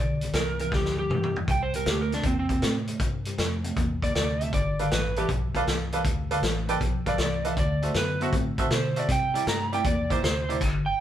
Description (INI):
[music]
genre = electric blues shuffle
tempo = 158 BPM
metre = 4/4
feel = swing 68% on 8ths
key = G mixolydian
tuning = A4 = 440 Hz
[part]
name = electric slide guitar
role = melody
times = 0.0-11.0 s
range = C4 to Bb5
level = -29 LUFS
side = right 2 dB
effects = none
[part]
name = crunchy overdriven guitar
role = riff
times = 0.0-10.8 s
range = G2 to C4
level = -31 LUFS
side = left 1 dB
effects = phaser
[part]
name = deep dub fingered electric bass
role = bass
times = 0.0-10.9 s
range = G1 to C3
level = -31 LUFS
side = equal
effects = none
[part]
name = vintage drum kit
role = drums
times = 0.2-10.7 s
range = crash cymbal, hi-hat, kick drum, snare drum, toms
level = -28 LUFS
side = left 1 dB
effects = none
[part]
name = bright upright piano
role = accompaniment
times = 4.8-10.6 s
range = E4 to G5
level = -31 LUFS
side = right 4 dB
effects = none
[sound]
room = moderate studio reverb, RT60 0.8 s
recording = band playing live in one room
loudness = -24 LUFS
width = side -11 dB against mid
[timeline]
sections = 0.0-11.0 A section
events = drum fill 0.7-1.5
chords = 0.0 G7; 1.5 C9; 4.5 G9; 7.6 D9; 9.1 C9